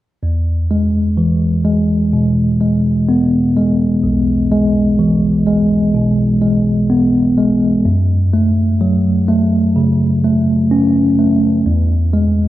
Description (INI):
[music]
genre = pop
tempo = 63 BPM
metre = 4/4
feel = straight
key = E major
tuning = A4 = 440 Hz
[part]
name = barky tine electric piano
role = accompaniment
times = 0.2-12.5 s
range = B1 to C#4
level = -12 LUFS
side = equal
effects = medium stereo tremolo
[sound]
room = moderate lush hall reverb, RT60 2.6 s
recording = worn, warbling old tape, cassette tape, warbly pitch drift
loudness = -12 LUFS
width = side -14 dB against mid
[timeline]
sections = 0.2-12.5 A section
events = none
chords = 0.2 E; 7.8 F#m; 11.7 E